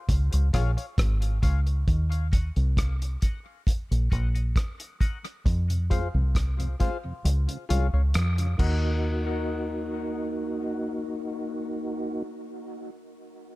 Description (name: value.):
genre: dub reggae.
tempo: 67 BPM.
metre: 4/4.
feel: straight.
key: Eb dorian.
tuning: A4 = 440 Hz.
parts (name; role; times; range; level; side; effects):
deep dub fingered electric bass; bass; 0.1-12.2 s; Ab1 to F2; -24 LUFS; equal; none.
cloth-damped thuddy drum kit; drums; 0.1-8.8 s; crash cymbal, hi-hat, kick drum, rim click; -26 LUFS; equal; none.
percussive organ stab; stabs; 0.5-12.2 s; F4 to Gb5; -37 LUFS; left 5 dB; chorus, high-pass filter, tape echo.
mellow tonewheel organ; accompaniment; 2.1-12.2 s; F2 to Gb4; -32 LUFS; equal; chorus vibrato, slow rotary speaker, high-pass filter, tape echo.
room: studio reverb.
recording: none.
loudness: -24 LUFS.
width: side -19 dB against mid.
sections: 0.0-1.9 A section; 1.9-9.0 B section; 9.0-12.6 C section.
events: break 0.0-1.9; filter sweep 0.0-5.5; kick muted 7.2-9.0.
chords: 0.1 Db; 1.9 Ebm; 5.5 Fm; 7.2 Db; 8.6 Ebm.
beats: 0.09 0.98 | 1.88 2.77 3.67 4.56 | 5.46 6.36 7.25 8.15 | 9.04 9.94 10.83 11.73.